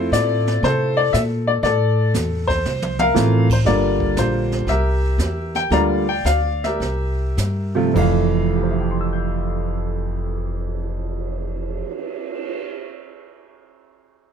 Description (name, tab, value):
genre	jazz piano trio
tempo	101-119 BPM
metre	4/4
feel	swing 68% on 8ths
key	F major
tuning	A4 = 440 Hz
part	clear baby grand piano	melody	0.0-13.0 s	F2 to G6	-20 LUFS	equal	none
part	upright bass	bass	0.0-11.8 s	F1 to C3	-21 LUFS	equal	none
part	jazz brush drum kit	drums	0.1-12.6 s	brushed snare drum, crash cymbal, cymbal swell, hi-hat, kick drum, snare drum, toms	-28 LUFS	right 4 dB	none
room	light reverb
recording	dark, warm production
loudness	-18 LUFS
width	side -7 dB against mid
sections	0.0-3.7 A section; 3.7-7.9 B section; 7.9-12.7 C section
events	drum fill 2.6-3.1; slowing down 3.7-7.9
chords	0.0 Fmaj7; 3.7 Gm7; 4.7 C7; 5.7 Gm7; 6.8 C7; 7.9 Fmaj7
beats	0.12 0.63 1.13 | 1.64 2.14 2.65 3.15 | 3.65 4.16 4.67 5.19 | 5.71 6.25 6.80 7.37 | 7.95 8.54 9.14 9.73 | 10.32 10.92 11.51 12.10